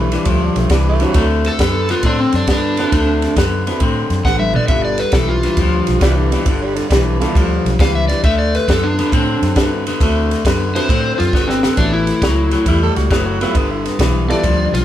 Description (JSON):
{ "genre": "electric blues shuffle", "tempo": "136 BPM", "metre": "4/4", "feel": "swing 68% on 8ths", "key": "D mixolydian", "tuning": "A4 = 443 Hz", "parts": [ { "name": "growling tenor saxophone", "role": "second line", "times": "0.0-1.3, 6.0-7.7, 12.7-14.2 s", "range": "D3 to A4", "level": "-24 LUFS", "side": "right 4 dB", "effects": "none" }, { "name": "electric guitar at the edge of break-up", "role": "riff", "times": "0.0-14.8 s", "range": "G2 to C4", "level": "-19 LUFS", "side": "left 3 dB", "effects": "spring reverb" }, { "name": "vintage muted fingered electric bass", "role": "bass", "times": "0.0-14.8 s", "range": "F#1 to A2", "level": "-19 LUFS", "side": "equal", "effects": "none" }, { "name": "compact cocktail drum kit", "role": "drums", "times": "0.1-14.8 s", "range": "kick drum, ride cymbal, snare drum, toms", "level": "-18 LUFS", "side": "equal", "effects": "none" }, { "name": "dark grand piano", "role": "accompaniment", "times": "1.0-14.4 s", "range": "B3 to B4", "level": "-24 LUFS", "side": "right 4 dB", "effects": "none" }, { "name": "overdriven slide guitar", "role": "melody", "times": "1.5-14.8 s", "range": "C4 to F#5", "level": "-18 LUFS", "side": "equal", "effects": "none" } ], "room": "moderate studio reverb, RT60 0.6 s", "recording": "band playing live in one room", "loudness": "-13 LUFS", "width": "side -12 dB against mid", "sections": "0.0-14.8 A section", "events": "drum fill 4.3-4.7, 11.3-11.8", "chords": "0.0 G13; 1.2 D13; 4.7 G13; 8.2 D13; 11.8 A13; 13.5 G13", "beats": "0.27 0.71 | 1.15 1.59 2.04 2.48 | 2.92 3.37 3.81 4.25 | 4.69 5.14 5.58 6.02 | 6.46 6.91 7.35 7.79 | 8.23 8.68 9.12 9.56 | 10.01 10.45 10.89 11.33 | 11.78 12.22 12.66 13.10 | 13.55 13.99 14.43" }